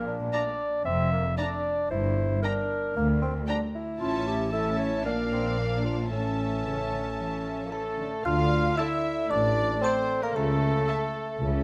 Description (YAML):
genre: cinematic, playful, whimsical film cue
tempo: 114 BPM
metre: 4/4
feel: straight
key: D minor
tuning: A4 = 440 Hz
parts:
  - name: mellow clarinet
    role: second line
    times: 0.0-11.6 s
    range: F4 to F5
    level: -35 LUFS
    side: equal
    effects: none
  - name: warm bassoon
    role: accompaniment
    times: 0.0-11.6 s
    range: A3 to F4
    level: -34 LUFS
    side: equal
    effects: none
  - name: warm studio cello section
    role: bass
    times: 0.0-11.6 s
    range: D2 to F3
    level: -34 LUFS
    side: equal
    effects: none
  - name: warm studio double bass section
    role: bass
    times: 0.0-11.6 s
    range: F1 to D2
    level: -35 LUFS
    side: equal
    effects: none
  - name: warm studio violin section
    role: melody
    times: 0.3-11.0 s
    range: F5 to Bb5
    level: -40 LUFS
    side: equal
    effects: none
  - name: dark studio violin section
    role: second line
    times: 0.3-11.6 s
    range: A4 to A5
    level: -41 LUFS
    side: equal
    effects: none
  - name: warm studio viola section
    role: accompaniment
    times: 0.3-11.0 s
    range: C#4 to E5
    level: -41 LUFS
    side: equal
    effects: none
  - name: mellow French horn section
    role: sustained chords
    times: 0.3-11.6 s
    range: E3 to E5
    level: -40 LUFS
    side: equal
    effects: none
  - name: music box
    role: melody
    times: 7.7-11.6 s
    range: A5 to F6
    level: -41 LUFS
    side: equal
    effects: none
  - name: clear oboe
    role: second line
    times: 7.7-11.6 s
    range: A4 to F5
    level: -38 LUFS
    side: equal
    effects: none
  - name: mellow tuba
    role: bass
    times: 8.3-11.6 s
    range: A1 to D2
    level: -35 LUFS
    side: equal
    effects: none
room: light reverb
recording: none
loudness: -27 LUFS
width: mono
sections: 0.0-8.3 A section; 8.3-11.6 B section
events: none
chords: 0.0 Bbmaj7; 1.9 Gm; 4.0 A; 5.1 Bb; 6.1 A; 8.3 Dm; 10.4 A/C#